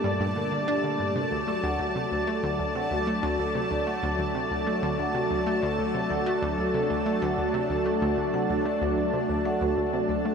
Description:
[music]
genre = ambient, sequencer-driven space music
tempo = 94 BPM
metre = 4/4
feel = straight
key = unclear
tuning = A4 = 440 Hz
[part]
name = lush unison pad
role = sustained chords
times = 0.0-10.3 s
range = Bb2 to A5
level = -27 LUFS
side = equal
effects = chorus
[part]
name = vibraphone with soft mallets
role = arpeggios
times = 0.0-10.2 s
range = F#4 to F#5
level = -32 LUFS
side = right 1 dB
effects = auto-pan, tape echo
[part]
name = analog pluck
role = riff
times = 0.0-10.3 s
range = D2 to D4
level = -30 LUFS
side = equal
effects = chorus, tape echo
[part]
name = bubbling stepped-filter texture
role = texture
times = 0.0-10.3 s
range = A3 to A5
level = -35 LUFS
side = left 1 dB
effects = chorus, built-in reverb
[sound]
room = wet huge ambient reverb, RT60 8.7 s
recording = none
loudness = -24 LUFS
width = side -6 dB against mid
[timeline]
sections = 0.0-10.3 A section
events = none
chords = 0.0 Gmadd9; 1.2 D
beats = 0.52 | 1.16 1.79 2.43 3.07 | 3.71 4.35 4.99 5.62 | 6.26 6.90 7.54 8.18 | 8.82 9.46 10.09

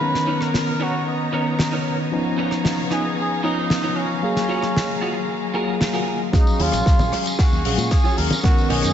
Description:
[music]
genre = nu-disco, nu disco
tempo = 114 BPM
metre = 4/4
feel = straight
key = Eb minor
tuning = A4 = 438 Hz
[part]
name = muted trumpet section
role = melody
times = 0.0-8.9 s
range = Db4 to Cb5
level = -26 LUFS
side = equal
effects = low-pass filter, tape echo
[part]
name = tine electric piano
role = accompaniment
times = 0.0-8.9 s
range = D#3 to A#5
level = -23 LUFS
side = left 1 dB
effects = medium stereo tremolo, low-pass filter, tape echo
[part]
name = bright symphonic string section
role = sustained chords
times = 0.0-8.9 s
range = Gb3 to Db6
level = -30 LUFS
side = left 1 dB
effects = sidechain pumping, low-pass filter
[part]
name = electric guitar at the edge of break-up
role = riff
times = 0.1-8.9 s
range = D#4 to Eb5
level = -29 LUFS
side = right 3 dB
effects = ensemble chorus, low-pass filter, tape echo
[part]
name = damped 70s drum kit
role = drums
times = 0.1-8.9 s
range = hi-hat, rim click, snare drum, tambourine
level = -26 LUFS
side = left 1 dB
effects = high-pass filter on hats, small room ambience, high-pass filter on snare, high-pass filter on perc, high-pass filter on room
[part]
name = electronic kick drum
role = drums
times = 6.3-8.5 s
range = none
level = -17 LUFS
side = equal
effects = small room ambience
[part]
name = congas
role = percussion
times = 6.3-8.5 s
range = none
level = -28 LUFS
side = left 2 dB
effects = none
[part]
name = modern bright fingered electric bass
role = bass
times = 6.6-8.9 s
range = Bb1 to Bb2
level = -24 LUFS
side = equal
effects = none
[sound]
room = moderate lush hall reverb, RT60 2.4 s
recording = dreamy mix soaked in reverb, nothing above 7.9 kHz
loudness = -18 LUFS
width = side -9 dB against mid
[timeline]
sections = 0.0-6.3 A section; 6.3-8.9 B section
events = build-up 6.3-8.9; drum fill 6.3-8.9; filter sweep on clean electric guitar 6.3-8.9; filter sweep on string section 6.3-8.9; filter sweep on trumpet section 6.3-8.9; filter sweep 6.3-8.9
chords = 0.0 Bmaj9; 2.1 Db13; 4.2 Gbmaj9; 6.3 Ebm11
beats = | 0.02 0.55 1.07 1.60 | 2.12 2.65 3.18 3.70 | 4.23 4.75 5.28 5.81 | 6.33 6.86 7.39 7.91 | 8.44

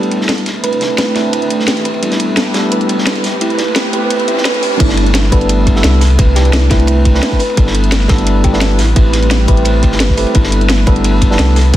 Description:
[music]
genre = liquid drum and bass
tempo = 173 BPM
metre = 4/4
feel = straight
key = G major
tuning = A4 = 440 Hz
[part]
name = tine electric piano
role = accompaniment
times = 0.0-11.8 s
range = G3 to B4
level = -16 LUFS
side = right 1 dB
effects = ping-pong delay
[part]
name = warm analog pad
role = sustained chords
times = 0.0-11.8 s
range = G3 to B4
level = -22 LUFS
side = right 1 dB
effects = chorus, sidechain pumping
[part]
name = drum and bass drum kit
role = drums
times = 0.0-11.8 s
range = crash cymbal, hi-hat, snare drum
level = -18 LUFS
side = equal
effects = none
[part]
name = riser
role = sound effects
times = 0.8-4.8 s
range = none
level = -24 LUFS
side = right 1 dB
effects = none
[part]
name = crunchy breakbeat drum kit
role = drums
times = 0.1-11.8 s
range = ride cymbal, snare drum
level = -21 LUFS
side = equal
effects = high-pass filter on cymbals, high-pass filter on snare, high-pass filter on room
[part]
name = thumb-piano-like synth pluck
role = arpeggios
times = 0.3-11.7 s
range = E4 to B4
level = -22 LUFS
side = equal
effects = chorus, ping-pong delay
[part]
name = warm sub bass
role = bass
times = 4.8-11.8 s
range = G1 to C2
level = -12 LUFS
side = equal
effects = none
[part]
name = electronic kick drum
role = drums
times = 4.8-11.8 s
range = none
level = -12 LUFS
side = equal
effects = none
[sound]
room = moderate recital hall reverb, RT60 1.5 s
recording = dense, heavily limited modern master, high-pass filter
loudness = -10 LUFS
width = side -13 dB against mid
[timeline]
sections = 0.0-4.8 A section; 4.8-11.8 B section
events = build-up 0.0-4.8; riser 0.8-4.8; drop 4.8-11.8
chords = 0.5 Cmaj13; 1.9 G69; 3.2 Am9; 4.8 G69; 6.0 Cmaj13; 7.4 G69; 8.8 Am9; 10.3 G69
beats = 0.29 | 0.64 0.98 1.33 1.68 | 2.02 2.37 2.72 3.07 | 3.41 3.76 4.11 4.45 | 4.80 5.15 5.49 5.84 | 6.19 6.53 6.88 7.23 | 7.57 7.92 8.27 8.62 | 8.96 9.31 9.65 10.00 | 10.35 10.70 11.04 11.39 | 11.74

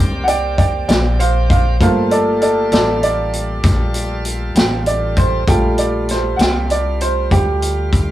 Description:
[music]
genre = slow blues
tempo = 65 BPM (dotted quarters)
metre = 12/8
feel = straight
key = G minor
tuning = A4 = 443 Hz
[part]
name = bright tonewheel organ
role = sustained chords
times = 0.0-8.1 s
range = G3 to D5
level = -28 LUFS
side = left 1 dB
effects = slow rotary speaker, overdrive
[part]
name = upright bass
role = bass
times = 0.0-8.1 s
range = G1 to D2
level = -20 LUFS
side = equal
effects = none
[part]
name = bright upright piano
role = accompaniment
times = 0.2-8.1 s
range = G3 to G5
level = -17 LUFS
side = right 2 dB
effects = none
[part]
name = vintage drum kit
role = drums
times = 0.3-8.1 s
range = hi-hat, kick drum, snare drum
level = -16 LUFS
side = equal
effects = none
[sound]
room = light reverb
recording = rough rehearsal-room recording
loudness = -13 LUFS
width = side -14 dB against mid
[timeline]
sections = 0.0-8.1 A section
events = upright piano solo 0.0-8.1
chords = 0.0 C7sus2; 1.8 Gm9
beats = 0.89 | 1.81 2.73 3.64 4.56 | 5.48 6.40 7.31

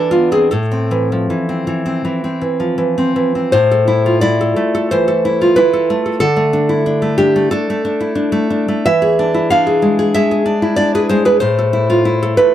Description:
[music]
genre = romantic piece for solo classical guitar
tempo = 76-97 BPM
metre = 4/4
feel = rubato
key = A minor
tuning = A4 = 441 Hz
[part]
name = nylon-string guitar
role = solo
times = 0.0-12.5 s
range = A2 to F5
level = -12 LUFS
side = equal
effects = none
[sound]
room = light reverb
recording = dry, close 1970s-style studio recording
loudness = -12 LUFS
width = side -11 dB against mid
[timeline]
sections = 0.0-3.5 A section; 3.5-12.5 B section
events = none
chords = 0.0 E5; 0.5 Am; 6.2 D5; 8.9 E7; 11.4 Am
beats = | 0.53 1.30 2.05 2.79 | 3.53 4.23 4.89 5.56 | 6.20 6.85 7.51 8.16 | 8.86 9.50 10.15 10.78 | 11.41 12.04

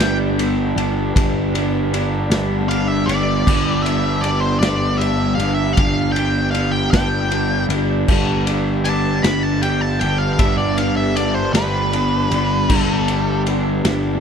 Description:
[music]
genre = psychedelic rock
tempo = 52 BPM (dotted quarters)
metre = 6/8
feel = straight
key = G major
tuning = A4 = 440 Hz
[part]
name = octave-fuzz lead guitar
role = melody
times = 0.0-13.4 s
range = B4 to B5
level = -22 LUFS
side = equal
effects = distortion, analog delay
[part]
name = combo organ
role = sustained chords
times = 0.0-14.2 s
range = G3 to B5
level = -30 LUFS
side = right 4 dB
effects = lush chorus
[part]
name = electric guitar through a small old amp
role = riff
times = 0.0-14.2 s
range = D3 to D4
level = -22 LUFS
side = right 1 dB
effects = phaser, double-tracked left and right, analog delay
[part]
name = fuzz picked electric bass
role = bass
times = 0.0-14.2 s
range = G1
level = -20 LUFS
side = equal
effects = overdrive
[part]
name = swarming drone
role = drone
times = 0.4-14.2 s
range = G2 to G3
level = -30 LUFS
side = left 1 dB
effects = none
[part]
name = vintage drum kit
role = drums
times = 0.0-14.0 s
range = crash cymbal, kick drum, ride cymbal, snare drum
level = -23 LUFS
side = equal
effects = none
[sound]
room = small room ambience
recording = echo-heavy mix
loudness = -16 LUFS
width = side -7 dB against mid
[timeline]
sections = 0.0-14.2 A section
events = lead electric guitar solo 0.0-14.2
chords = 0.0 G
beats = 0.00 | 1.15 2.31 | 3.46 4.62 | 5.78 6.93 | 8.09 9.24 | 10.39 11.55 | 12.70 13.85

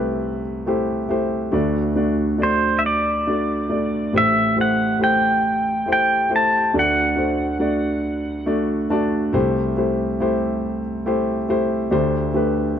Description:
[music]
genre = acoustic folk-pop ballad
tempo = 46 BPM (dotted quarters)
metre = 6/8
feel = straight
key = unclear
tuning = A4 = 442 Hz
[part]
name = warm grand piano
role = accompaniment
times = 0.0-12.8 s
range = A1 to A5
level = -20 LUFS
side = equal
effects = none
[part]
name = pedal steel guitar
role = melody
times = 2.4-8.5 s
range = C5 to A5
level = -19 LUFS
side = equal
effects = none
[sound]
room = light reverb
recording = dark, warm production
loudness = -18 LUFS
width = side -9 dB against mid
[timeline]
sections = 0.0-12.8 A section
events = none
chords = 0.0 Am7/C; 1.5 D; 4.2 Am7; 6.8 D; 9.3 Am7/C; 11.9 D7sus4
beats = 0.25 | 1.54 2.85 | 4.15 5.46 | 6.75 8.05 | 9.34 10.63 | 11.93

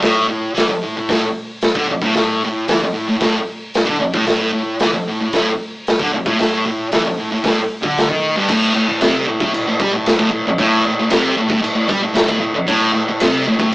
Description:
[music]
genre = garage rock duo or trio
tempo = 114 BPM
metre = 4/4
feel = straight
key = unclear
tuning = A4 = 442 Hz
[part]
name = thick fuzz guitar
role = riff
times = 0.0-13.7 s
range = G2 to G3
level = -16 LUFS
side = equal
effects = distortion
[part]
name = raw garage drum kit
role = drums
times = 0.0-13.7 s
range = crash cymbal, hi-hat, kick drum, snare drum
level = -18 LUFS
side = equal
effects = none
[sound]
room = light reverb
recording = rough rehearsal-room recording, warm saturation, small speaker sound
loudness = -14 LUFS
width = side -20 dB against mid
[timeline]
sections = 0.0-8.5 A section; 8.5-13.7 B section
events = none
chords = none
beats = | 0.02 0.55 1.08 1.62 | 2.15 2.68 3.21 3.74 | 4.27 4.80 5.33 5.85 | 6.38 6.91 7.44 7.96 | 8.49 9.01 9.54 10.06 | 10.59 11.11 11.64 12.16 | 12.69 13.21 13.73

